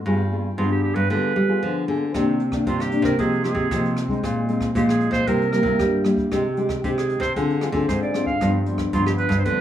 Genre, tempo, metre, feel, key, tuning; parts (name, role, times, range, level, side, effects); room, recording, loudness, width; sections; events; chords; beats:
samba and choro; 115 BPM; 4/4; straight; C minor; A4 = 440 Hz
nylon-string guitar; accompaniment; 0.1-9.6 s; G2 to Ab4; -23 LUFS; left 2 dB; plate reverb
nylon-string guitar; bass; 0.1-9.6 s; G2 to G3; -23 LUFS; right 1 dB
clear clarinet; melody; 0.6-9.6 s; F4 to F5; -25 LUFS; right 4 dB; plate reverb
jazz brush drum kit; drums; 2.1-9.6 s; hi-hat, kick drum, rim click; -33 LUFS; equal
light reverb; rough home demo mix, small room ambience; -19 LUFS; side -10 dB against mid
0.0-9.6 A section
0.1 G7b9; 2.1 Cm9; 3.2 F7sus4/C; 4.2 Bb9sus4; 5.3 C7; 6.3 Abmaj7/C; 7.4 Dm7b5; 8.4 G7
| 0.06 0.58 1.10 1.62 | 2.15 2.67 3.19 3.71 | 4.23 4.75 5.28 5.80 | 6.32 6.84 7.37 7.89 | 8.41 8.93 9.46